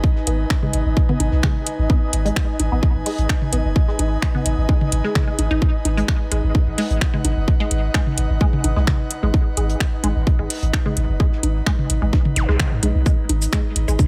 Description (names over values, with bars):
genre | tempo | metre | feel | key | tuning
minimal techno | 129 BPM | 4/4 | swing 53% on 16ths | G# minor | A4 = 443 Hz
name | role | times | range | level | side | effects
cloth-damped thuddy drum kit | drums | 0.0-14.1 s | hi-hat, shaker, snare drum | -43 LUFS | equal | none
electronic kick drum | drums | 0.0-14.1 s | none | -21 LUFS | equal | none
airy breathy pad | texture | 0.0-14.1 s | D#4 to G#5 | -31 LUFS | equal | chorus, sidechain pumping
flickering grainy texture | texture | 0.0-13.1 s | D#5 | -37 LUFS | equal | built-in reverb, sidechain pumping
resonant blip pluck | riff | 0.3-13.9 s | G#3 to D#4 | -30 LUFS | equal | chorus, phaser, sidechain pumping, dub echo
punchy sub bass | bass | 0.3-14.0 s | F#1 to G#2 | -22 LUFS | equal | sidechain pumping
house drum kit | drums | 0.3-14.1 s | finger snaps, hi-hat, shaker | -26 LUFS | equal | none
electronic bongos and toms | percussion | 0.5-14.1 s | none | -29 LUFS | equal | dub echo
zap | sound effects | 12.4-12.5 s | none | -32 LUFS | equal | none
room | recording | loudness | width
digital ambience | echo-heavy mix | -19 LUFS | mono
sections
0.0-13.1 A section; 13.1-14.1 B section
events
drop 13.1-14.1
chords
0.0 G#m